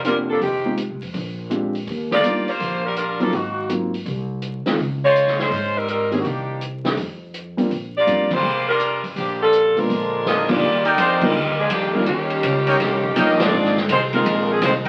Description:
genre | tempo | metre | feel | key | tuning
jazz, big band swing | 165 BPM | 4/4 | swing 66% on 8ths | Bb major, Eb major from 10.6 s | A4 = 440 Hz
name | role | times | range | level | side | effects
dark upright piano | accompaniment | 0.0-14.6 s | Eb3 to G4 | -25 LUFS | equal | none
upright bass | bass | 0.0-14.9 s | F1 to Ab2 | -31 LUFS | equal | none
swinging big-band drum kit | drums | 0.0-14.9 s | crash cymbal, hi-hat, kick drum, ride cymbal, snare drum | -29 LUFS | equal | none
bright saxophone section | melody | 0.1-14.7 s | Eb3 to Eb5 | -22 LUFS | equal | none
bright trombone section | second line | 9.8-14.9 s | Bb2 to F4 | -28 LUFS | equal | none
clear trumpet section | stabs | 10.8-14.9 s | Eb4 to G5 | -22 LUFS | equal | none
room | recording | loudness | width
wet studio reverb, RT60 0.5 s | very old 78 rpm record, vinyl crackle | -20 LUFS | mono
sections
0.0-10.6 A section; 10.6-14.9 B section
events
band accent 8.2, 10.4, 11.2, 13.3; drum fill 10.3-10.6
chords
0.4 Fm9; 1.1 Bb13; 1.9 Ebmaj9; 3.3 Ab13; 4.8 Dbmaj7; 6.2 Cm9; 7.0 Fsus2; 7.7 Bb6; 9.9 Bb7b9; 10.6 Ebmaj7; 12.1 Eb7; 13.5 Ab6

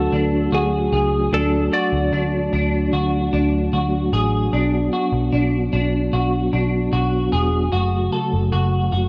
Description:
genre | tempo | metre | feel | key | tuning
dream pop | 75 BPM | 4/4 | straight | D lydian | A4 = 437 Hz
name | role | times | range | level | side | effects
clean lap steel guitar | melody | 0.0-2.9 s | G#4 to D5 | -26 LUFS | equal | digital delay
mellow tonewheel organ | sustained chords | 0.0-9.1 s | C#3 to F#4 | -24 LUFS | equal | chorus vibrato, fast rotary speaker
semi-hollow electric guitar | arpeggios | 0.0-9.1 s | D4 to A4 | -26 LUFS | equal | ensemble chorus, digital delay
vintage muted picked electric bass | bass | 0.0-9.1 s | E1 to D2 | -24 LUFS | equal | none
room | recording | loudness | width
moderate lush hall reverb, RT60 2.4 s | worn, warbling old tape, cassette tape, warbly pitch drift | -20 LUFS | mono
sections
0.0-9.1 A section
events
none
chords
0.0 D; 4.5 Bm; 7.7 F#m

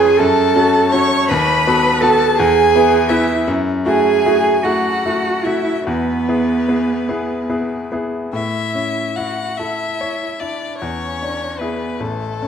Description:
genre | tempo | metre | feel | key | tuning
classical, slow romantic movement for piano trio | 46-57 BPM (dotted quarters) | 6/8 | rubato | A major | A4 = 440 Hz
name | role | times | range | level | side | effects
rich violin | melody | 0.0-12.5 s | A4 to C#6 | -21 LUFS | left 5 dB | none
rich cello | second line | 0.0-12.5 s | A3 to C#5 | -18 LUFS | right 5 dB | none
bright grand piano | accompaniment | 0.0-12.5 s | A1 to C#5 | -19 LUFS | left 3 dB | none
room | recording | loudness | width
wet recital hall reverb, RT60 1.7 s | dark, warm production | -14 LUFS | side -7 dB against mid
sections
0.0-8.3 A section; 8.3-12.5 B section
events
none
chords
0.2 F#m; 1.3 B7/D#; 2.4 E; 3.5 F#m7; 5.9 E; 8.3 A; 10.8 E7

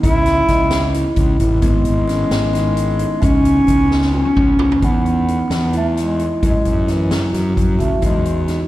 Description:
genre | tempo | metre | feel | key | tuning
progressive instrumental, band music in an uneven meter | 263 BPM (eighths) | 7/8 | straight | unclear | A4 = 441 Hz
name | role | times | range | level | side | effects
mellow bass clarinet | melody | 0.0-8.4 s | E3 to E4 | -17 LUFS | equal | slapback echo
kalimba | arpeggios | 0.0-8.7 s | B3 to D#5 | -22 LUFS | right 1 dB | none
fuzz fingered electric bass | bass | 0.0-8.6 s | G#1 to F#2 | -19 LUFS | equal | overdrive
street-band drum kit | drums | 0.0-8.6 s | hi-hat, kick drum, snare drum, toms | -20 LUFS | equal | none
room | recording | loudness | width
moderate club reverb, RT60 0.5 s | live gig heard through the venue's PA, recital hall reverb | -14 LUFS | side -16 dB against mid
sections
0.0-4.8 A section; 4.8-8.7 B section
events
drum fill 3.9-4.8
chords
0.0 C#m; 1.6 G#m; 3.2 C#; 4.8 Emaj7; 6.4 F#sus2; 8.0 Emaj7

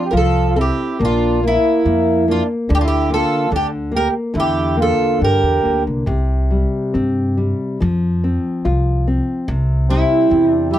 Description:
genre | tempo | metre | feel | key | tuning
fado-style ballad | 71 BPM | 2/4 | rubato | F major | A4 = 440 Hz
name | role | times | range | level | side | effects
fingerpicked twelve-string acoustic guitar | melody | 0.0-5.8, 9.9-10.8 s | E4 to Bb4 | -17 LUFS | equal | none
mellow accordion | second line | 0.0-5.8, 9.9-10.8 s | Bb3 to G4 | -21 LUFS | right 4 dB | none
nylon-string guitar | accompaniment | 0.0-10.8 s | C3 to F4 | -20 LUFS | left 2 dB | none
upright bass | bass | 0.1-10.8 s | Bb1 to G2 | -19 LUFS | equal | none
room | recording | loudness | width
light reverb | dry, close 1970s-style studio recording | -14 LUFS | side -12 dB against mid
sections
0.0-10.8 A section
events
none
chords
0.0 F5; 1.0 Bb5; 2.7 Gm13/D; 4.3 Em7b5; 6.1 C5; 7.8 F5; 9.5 C

